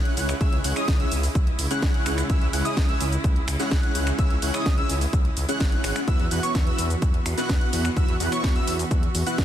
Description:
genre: EDM, festival progressive house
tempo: 127 BPM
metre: 4/4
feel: straight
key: C# minor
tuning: A4 = 439 Hz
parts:
  - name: dark chamber string section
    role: sustained chords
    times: 0.0-9.4 s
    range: C#3 to F#4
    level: -33 LUFS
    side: right 2 dB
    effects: sidechain pumping
  - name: wide unison lead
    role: arpeggios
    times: 0.0-9.4 s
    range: C#6 to F#6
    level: -31 LUFS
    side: right 1 dB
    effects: lush chorus, cassette tape, sidechain pumping, digital delay
  - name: dense compressed supersaw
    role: riff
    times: 0.0-9.4 s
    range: B3 to F#5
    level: -29 LUFS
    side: equal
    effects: sidechain pumping, digital delay
  - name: house drum kit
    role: drums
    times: 0.1-9.4 s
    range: finger snaps, hi-hat, shaker, snare drum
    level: -30 LUFS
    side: equal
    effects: overdrive
  - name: detuned saw bass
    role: bass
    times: 0.2-9.4 s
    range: G#1 to E2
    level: -28 LUFS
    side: equal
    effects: sidechain pumping
  - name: electronic kick drum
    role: drums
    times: 0.4-9.4 s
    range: none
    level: -22 LUFS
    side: equal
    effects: overdrive
room: digital ambience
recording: dense, heavily limited modern master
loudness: -21 LUFS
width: side -11 dB against mid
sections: 0.0-9.4 A section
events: none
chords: 0.0 C#m; 6.1 Esus2

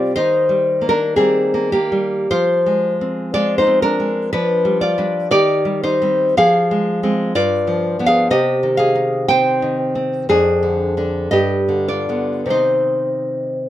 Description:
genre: romantic piece for solo classical guitar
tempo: 48-63 BPM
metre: 2/4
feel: rubato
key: C minor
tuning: A4 = 439 Hz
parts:
  - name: nylon-string guitar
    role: solo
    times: 0.0-13.7 s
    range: F2 to G5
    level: -15 LUFS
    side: equal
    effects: none
room: light reverb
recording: minimal, uncompressed stereo recording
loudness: -15 LUFS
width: side -13 dB against mid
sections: 0.0-13.7 A section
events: none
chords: 0.2 Eb; 2.3 Fm; 4.3 G7/F; 5.3 Cm/Eb; 6.4 Fm; 7.4 G7; 8.3 Cm; 10.3 Ddim/F; 11.3 G; 12.5 Cm

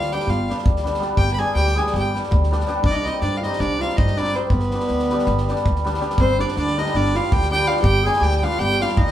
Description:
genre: balkan folk, Balkan wedding band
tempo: 325 BPM (eighths)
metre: 9/8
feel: straight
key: G phrygian dominant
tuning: A4 = 440 Hz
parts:
  - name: warm violin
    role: melody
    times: 0.0-9.1 s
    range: B4 to B5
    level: -24 LUFS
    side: left 1 dB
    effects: none
  - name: mellow clarinet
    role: second line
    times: 0.0-9.1 s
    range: B3 to B4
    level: -26 LUFS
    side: right 3 dB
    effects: none
  - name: cimbalom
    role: accompaniment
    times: 0.0-9.1 s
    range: G3 to G4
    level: -24 LUFS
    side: left 1 dB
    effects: none
  - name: upright bass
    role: bass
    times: 0.0-9.1 s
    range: G1 to G2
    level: -23 LUFS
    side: equal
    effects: none
  - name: loose indie drum kit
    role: percussion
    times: 0.0-9.1 s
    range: kick drum, snare drum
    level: -24 LUFS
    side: equal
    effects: none
room: wet large studio reverb, RT60 1.3 s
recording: band playing live in one room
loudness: -17 LUFS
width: side -12 dB against mid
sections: 0.0-6.2 A section; 6.2-9.1 B section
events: none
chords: 0.0 G; 2.8 Cm; 4.5 G

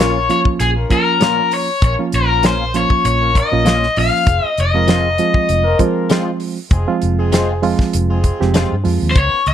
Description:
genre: straight-eighth soul blues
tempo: 98 BPM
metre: 4/4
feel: straight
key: F minor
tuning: A4 = 440 Hz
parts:
  - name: cranked stack guitar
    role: melody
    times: 0.0-9.5 s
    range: Ab4 to F5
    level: -16 LUFS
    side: left 4 dB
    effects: overdrive, slapback echo, plate reverb
  - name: barky reed electric piano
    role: accompaniment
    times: 0.0-9.2 s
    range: F3 to G4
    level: -19 LUFS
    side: right 6 dB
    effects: overdrive
  - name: mellow horn section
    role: sustained chords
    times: 0.0-9.4 s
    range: Ab3 to Cb5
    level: -25 LUFS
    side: left 2 dB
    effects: stereo widening
  - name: direct-recorded clean electric guitar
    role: stabs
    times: 0.0-8.7 s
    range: Bb2 to F4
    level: -21 LUFS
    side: left 5 dB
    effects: ensemble chorus, slapback echo
  - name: vintage muted fingered electric bass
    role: bass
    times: 0.0-9.5 s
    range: F1 to G2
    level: -18 LUFS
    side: equal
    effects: none
  - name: damped 70s drum kit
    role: drums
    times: 0.0-9.5 s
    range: hi-hat, kick drum, snare drum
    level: -17 LUFS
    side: equal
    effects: none
room: light reverb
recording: none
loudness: -13 LUFS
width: side -10 dB against mid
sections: 0.0-9.5 A section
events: none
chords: 0.0 Bbm; 4.3 Fm

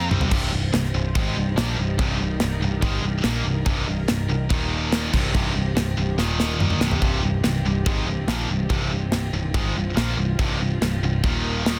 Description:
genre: heavy metal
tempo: 143 BPM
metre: 4/4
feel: straight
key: C minor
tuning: A4 = 439 Hz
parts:
  - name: distorted electric guitar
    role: riff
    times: 0.0-11.8 s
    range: C2 to C4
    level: -31 LUFS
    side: equal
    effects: overdrive
  - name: heavy high-gain guitar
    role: riff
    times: 0.0-11.8 s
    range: C2 to C4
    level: -31 LUFS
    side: equal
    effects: distortion
  - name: overdriven picked electric bass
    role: bass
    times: 0.0-11.8 s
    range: C1 to C2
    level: -28 LUFS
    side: equal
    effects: none
  - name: modern studio drum kit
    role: drums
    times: 0.1-11.8 s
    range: crash cymbal, kick drum, snare drum, toms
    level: -27 LUFS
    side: equal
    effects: none
  - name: sweeping resonant pad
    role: sustained chords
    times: 0.3-11.8 s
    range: Eb3 to C5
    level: -36 LUFS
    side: equal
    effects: chorus
room: little or no reverb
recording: dense, heavily limited modern master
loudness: -23 LUFS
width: mono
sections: 0.3-11.8 A section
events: drum fill 0.0-0.3, 6.2-7.0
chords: 0.3 Cm; 4.5 Eb5; 5.1 Cm; 6.2 Eb5; 6.8 Cm; 11.2 Eb5

